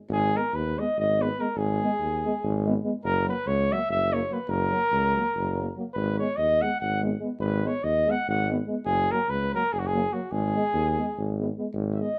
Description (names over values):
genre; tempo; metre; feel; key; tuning
balkan folk, Balkan brass band; 288 BPM (eighths); 7/8; straight; G# minor; A4 = 441 Hz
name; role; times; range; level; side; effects
warm flugelhorn; melody; 0.1-12.2 s; F#4 to F#5; -28 LUFS; equal; none
warm tuba; bass; 0.1-12.0 s; F#1 to D#2; -31 LUFS; equal; none
warm French horn; accompaniment; 0.3-12.1 s; A#3 to B3; -36 LUFS; equal; none
warm euphonium; accompaniment; 0.3-12.1 s; F#3 to G#3; -36 LUFS; equal; none
room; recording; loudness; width
moderate studio reverb, RT60 0.9 s; band playing live in one room; -26 LUFS; mono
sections
0.1-11.8 A section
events
none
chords
0.1 G#m; 3.0 F#; 5.9 G#m; 8.9 F#; 10.3 G#m